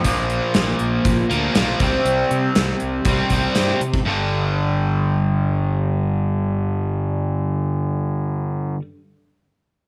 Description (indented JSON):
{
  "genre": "classic rock",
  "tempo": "120 BPM",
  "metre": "4/4",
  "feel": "straight",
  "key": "unclear",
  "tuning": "A4 = 439 Hz",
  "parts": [
    { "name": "crunchy overdriven guitar", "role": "riff", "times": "0.0-8.8 s", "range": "G2 to C4", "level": "-25 LUFS", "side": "equal", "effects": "none" },
    { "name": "crunchy overdriven guitar", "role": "riff", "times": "0.0-8.8 s", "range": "G2 to C4", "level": "-26 LUFS", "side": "equal", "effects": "phaser" },
    { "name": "fuzz fingered electric bass", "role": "bass", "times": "0.0-8.7 s", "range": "G1 to C3", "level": "-27 LUFS", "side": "equal", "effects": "overdrive" },
    { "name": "gated 80s drum kit", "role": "drums", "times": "0.0-4.1 s", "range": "hi-hat, kick drum, snare drum", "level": "-23 LUFS", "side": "equal", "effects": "none" }
  ],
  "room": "moderate echo chamber reverb, RT60 1.3 s, small room ambience",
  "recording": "none",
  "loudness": "-20 LUFS",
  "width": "mono",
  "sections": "0.0-4.1 A section; 4.1-8.1 B section",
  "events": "none",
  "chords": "0.1 Bb5; 1.8 C5; 4.1 G5",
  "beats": "| 0.05 0.55 1.05 1.56 | 2.06 2.56 3.06 3.56 | 4.06 4.57 5.07 5.57 | 6.07 6.58 7.08 7.58"
}